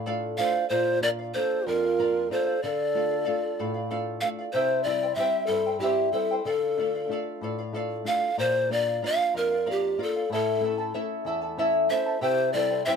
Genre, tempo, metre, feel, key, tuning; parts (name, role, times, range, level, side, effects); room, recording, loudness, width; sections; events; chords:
andean folk, Andean ensemble; 62 BPM (dotted quarters); 6/8; straight; D minor; A4 = 439 Hz
charango; accompaniment; 0.0-13.0 s; E4 to A5; -30 LUFS; equal
flamenco guitar; accompaniment; 0.0-13.0 s; E2 to F4; -34 LUFS; left 3 dB
breathy mellow pan flute; melody; 0.4-12.9 s; G4 to F5; -25 LUFS; left 1 dB
breathy mellow large quena; second line; 0.4-3.9, 11.9-12.9 s; F4 to C5; -30 LUFS; right 9 dB
light reverb; minimal, uncompressed stereo recording; -24 LUFS; side -6 dB against mid
0.0-4.5 A section; 4.5-13.0 A section
0.0 Dm; 0.7 Bb; 2.6 Dm; 4.5 C; 6.5 Dm; 8.4 Bb; 10.3 A; 12.2 C